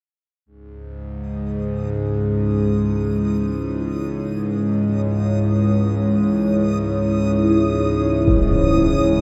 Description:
dark ambient drone; free time; C# minor; A4 = 439 Hz
deep dark ambient pad; sustained chords; 2.2-9.2 s; G#3 to E5; -24 LUFS; equal; chorus, built-in reverb
overtone-sweeping drone; drone; 0.8-9.2 s; C#2 to G#2; -22 LUFS; equal; chorus, built-in reverb
backwards swelling texture; texture; 1.4-9.2 s; D#6; -37 LUFS; equal; built-in reverb
impact; percussion; 8.3-8.5 s; -23 LUFS; equal; low-pass filter on sfx
wet huge ambient reverb, RT60 7.2 s; -20 LUFS; mono
0.5-9.2 A section
fade-in on synth texture 0.5-9.2
0.5 C#m
free time

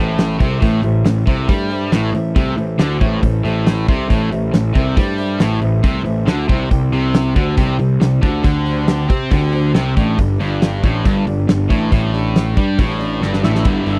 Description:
classic rock; 138 BPM; 4/4; straight; A minor; A4 = 440 Hz
picked steel-string acoustic guitar; accompaniment; 0.0-14.0 s; G3 to G5; -30 LUFS; equal
cranked stack guitar; riff; 0.0-14.0 s; G2 to C4; -24 LUFS; equal; overdrive
overdriven electric guitar; riff; 0.0-14.0 s; G2 to C4; -24 LUFS; equal
fuzz picked electric bass; bass; 0.0-14.0 s; G1 to C3; -22 LUFS; equal; overdrive
big rock drum kit; drums; 0.2-14.0 s; crash cymbal, hi-hat, kick drum, snare drum; -18 LUFS; equal
overdriven tonewheel organ; melody; 13.4-14.0 s; E4; -28 LUFS; equal; slow rotary speaker, chorus vibrato
little or no reverb; dry, close 1970s-style studio recording; -16 LUFS; mono
0.0-13.7 A section
drum fill 13.2-13.7
0.0 Am; 6.5 C5; 10.0 G5
0.19 0.62 1.06 | 1.49 1.93 2.36 2.80 | 3.23 3.67 4.10 4.54 | 4.97 5.41 5.84 6.28 | 6.71 7.15 7.58 8.02 | 8.45 8.88 9.32 9.75 | 10.19 10.62 11.05 11.49 | 11.92 12.36 12.79 13.22 | 13.66

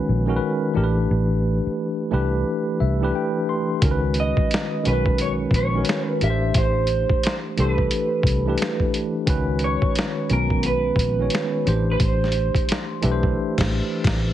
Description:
R&B, neo-soul; 88 BPM; 4/4; swing 64% on 16ths; A4 = 440 Hz
tine electric piano; accompaniment; 0.0-14.3 s; D#3 to C6; -24 LUFS; left 1 dB; medium stereo tremolo, plate reverb
vintage muted fingered electric bass; bass; 0.1-14.3 s; A1 to C#2; -22 LUFS; equal
boom bap sampler-style drum kit; drums; 3.8-14.3 s; crash cymbal, finger snaps, hi-hat, kick drum, snare drum; -23 LUFS; equal
electric guitar through a small old amp; melody; 4.2-14.0 s; A#4 to E5; -26 LUFS; right 3 dB; lush chorus
light reverb; heavily compressed radio sound, nothing above 10.8 kHz; -19 LUFS; side -12 dB against mid
0.0-14.3 A section
tine electric piano fill 2.5-3.8; band accent 13.4-14.3
0.0 C#sus2; 0.8 Am9; 3.8 C#sus2; 6.2 Am9; 9.3 C#sus2; 11.7 Am9
0.41 | 1.09 1.77 2.46 3.14 | 3.82 4.50 5.18 5.86 | 6.55 7.23 7.91 8.59 | 9.27 9.96 10.64 11.32 | 12.00 12.68 13.36 14.05

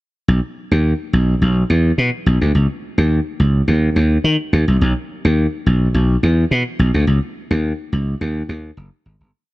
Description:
funk; 106 BPM; 4/4; straight; B major; A4 = 437 Hz
slap bass; solo; 0.3-9.3 s; F#1 to Eb3; -15 LUFS; equal
little or no reverb; dry, close 1970s-style studio recording; -15 LUFS; side -18 dB against mid
0.3-9.3 verse
fade-out 7.1-9.3
| 0.28 0.85 1.42 1.98 | 2.55 3.11 3.68 4.25 | 4.81 5.38 5.94 6.51 | 7.08 7.64 8.21 8.77

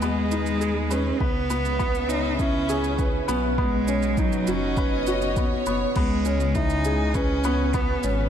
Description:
piano and strings electronica; 101 BPM; 4/4; straight; C# minor; A4 = 441 Hz
clear cello; melody; 0.0-8.2 s; F#3 to D#4; -27 LUFS; right 1 dB; ping-pong delay
rich symphonic string section; sustained chords; 0.0-8.3 s; B2 to G#5; -32 LUFS; right 1 dB; sidechain pumping
felt-muted upright piano; riff; 0.0-8.3 s; B3 to D#5; -26 LUFS; left 2 dB; ping-pong delay
dark detuned saw bass; bass; 0.0-8.3 s; F#1 to D#2; -28 LUFS; equal; sidechain pumping
electronic shaker and crash cymbal; drums; 0.0-8.2 s; -40 LUFS; right 10 dB; overdrive
electronic kick drum; drums; 1.2-7.9 s; -26 LUFS; equal; overdrive
moderate concert hall reverb, RT60 2.1 s; dark, warm production; -21 LUFS; side -9 dB against mid
0.0-6.0 A section; 6.0-8.3 B section
build-up 0.0-6.0; drop 6.0-8.3
0.0 G#m; 1.2 C#m7; 3.6 Badd9; 6.0 C#m7
0.02 0.61 | 1.21 1.80 2.40 2.99 | 3.58 4.18 4.77 5.37 | 5.96 6.55 7.15 7.74

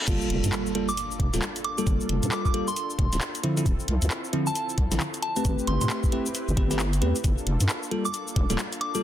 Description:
UK garage, two-step garage; 134 BPM; 4/4; swing 62% on 16ths; G dorian; A4 = 441 Hz
reverse cymbal and impact; sound effects; 0.0-1.9 s; -34 LUFS; left 1 dB
warm analog pad; sustained chords; 0.1-9.0 s; Bb3 to B4; -38 LUFS; equal; chorus, sidechain pumping
bell-like tine electric piano; stabs; 0.1-9.0 s; D3 to B4; -29 LUFS; equal; phaser, ping-pong delay
deep soft wobble bass; bass; 0.1-8.6 s; D1 to A2; -25 LUFS; equal; chorus
electronic kick drum; drums; 0.1-8.5 s; -25 LUFS; equal
garage drum kit; drums; 0.1-9.0 s; cabasa, crash cymbal, handclaps, hi-hat, snare drum; -31 LUFS; left 1 dB
soft synth bell; melody; 0.9-9.0 s; A5 to D6; -32 LUFS; right 1 dB; chorus
light reverb, digital ambience; dense, heavily limited modern master; -23 LUFS; side -11 dB against mid
0.1-9.0 A section
drop 0.1-9.0; impact 0.1-1.9
0.1 Gm9; 3.4 Dm9; 5.4 Am9; 7.2 Gm9
| 0.08 0.52 0.97 1.42 | 1.87 2.31 2.76 3.21 | 3.66 4.11 4.55 5.00 | 5.45 5.90 6.34 6.79 | 7.24 7.69 8.14 8.58

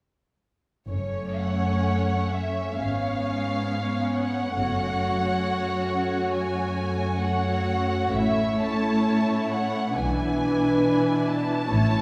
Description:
classical, slow romantic movement for string orchestra; 67 BPM; 4/4; uneven beats, rubato; F# minor; A4 = 440 Hz
muted symphonic violin section; melody; 0.9-12.0 s; C#5 to A5; -32 LUFS; equal
muted symphonic violin section; second line; 0.9-12.0 s; C#4 to C#5; -32 LUFS; equal
muted symphonic viola section; accompaniment; 0.9-12.0 s; E3 to D4; -30 LUFS; equal
muted symphonic cello section; bass; 0.9-12.0 s; F#2 to B2; -30 LUFS; equal
muted symphonic double bass section; bass; 0.9-12.0 s; F#1 to B1; -33 LUFS; equal
wet scoring stage reverb, RT60 1.6 s; heard from further back in the room; -25 LUFS; mono
0.9-12.0 A section
0.9 F#m; 2.8 C#7/G#; 4.6 F#m; 8.2 A; 10.0 E7/B
| 0.91 1.90 2.80 3.69 | 4.58 5.48 6.35 7.23 | 8.15 9.09 9.97 10.85 | 11.71

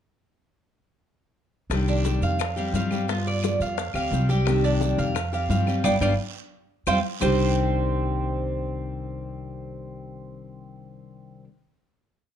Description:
latin, Cuban son and guajira; 174 BPM; 4/4; straight; C minor; A4 = 439 Hz
picked steel-string acoustic guitar; accompaniment; 1.7-11.5 s; C3 to G4; -28 LUFS; left 4 dB
upright bass; bass; 1.7-11.4 s; G1 to G2; -27 LUFS; equal
bongos; percussion; 1.7-7.3 s; -35 LUFS; left 8 dB
claves; percussion; 1.7-7.3 s; -38 LUFS; left 7 dB
congas; percussion; 1.7-7.3 s; -34 LUFS; equal
guiro; percussion; 1.7-7.3 s; -42 LUFS; right 10 dB
maracas; percussion; 1.7-7.3 s; -42 LUFS; left 9 dB
Cuban tres; arpeggios; 1.9-11.4 s; C4 to G5; -28 LUFS; right 5 dB
light reverb; dark, warm production; -22 LUFS; side -9 dB against mid
1.7-7.2 montuno (vamp); 7.2-10.0 final chord
band accent 5.8-7.2; drum fill 6.2-7.2
1.7 Cmadd9; 2.4 Fsus2; 3.1 G7; 3.8 Fsus2; 4.5 Cmadd9; 5.2 Fsus2; 5.8 G7; 6.5 Fsus2; 7.2 Cmadd9
| 1.71 2.06 2.40 2.75 | 3.09 3.44 3.78 4.13 | 4.47 4.82 5.16 5.50 | 5.85 6.19 6.54 6.88 | 7.22 7.57 7.91 8.26 | 8.60 8.95 9.29 9.64

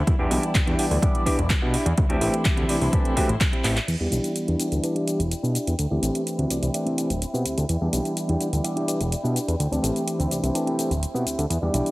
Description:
filtered disco house; 126 BPM; 4/4; straight; E minor; A4 = 441 Hz
rich studio violin section; sustained chords; 0.0-11.9 s; E4 to G5; -34 LUFS; equal; sidechain pumping, low-pass filter
fat analog bass; bass; 0.0-11.8 s; D1 to B2; -24 LUFS; equal; sidechain pumping, low-pass filter
electronic kick drum; drums; 0.1-3.5 s; -22 LUFS; equal; studio reverb
house drum kit; drums; 0.1-11.9 s; crash cymbal, handclaps, hi-hat, shaker; -30 LUFS; equal; sidechain pumping on hats, studio reverb, sidechain pumping on cymbals, sidechain pumping on perc
tine electric piano; accompaniment; 0.2-11.9 s; E3 to G4; -28 LUFS; equal; phaser, sidechain pumping, low-pass filter
mellow electric guitar; riff; 0.2-11.9 s; C4 to G4; -29 LUFS; equal; sidechain pumping, low-pass filter
light reverb; heavily compressed radio sound; -21 LUFS; side -20 dB against mid
0.0-3.9 A section; 3.9-11.9 B section
drum fill 3.6
0.1 Em7; 2.0 D9sus4; 3.9 Em7; 5.8 D9sus4; 7.7 Em7; 9.6 D9sus4
| 0.07 0.55 1.02 1.50 | 1.98 2.45 2.93 3.41 | 3.88 4.36 4.83 5.31 | 5.79 6.26 6.74 7.22 | 7.69 8.17 8.64 9.12 | 9.60 10.07 10.55 11.03 | 11.50

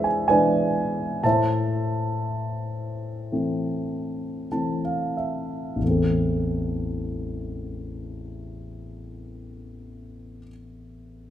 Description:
classical, lyrical solo piano; 45-65 BPM; 4/4; rubato; A harmonic minor; A4 = 443 Hz
dark concert grand piano; solo; 0.0-11.3 s; A1 to A5; -24 LUFS; equal
moderate concert hall reverb, RT60 2.0 s; -23 LUFS; side -11 dB against mid
0.0-5.8 A section; 5.8-10.9 B section
slowing down 0.0-5.8; grand piano fill 3.9-5.8
0.0 E7; 1.2 Am
0.29 | 1.24 2.24 3.32 4.51 | 5.82 7.11 8.37 9.62

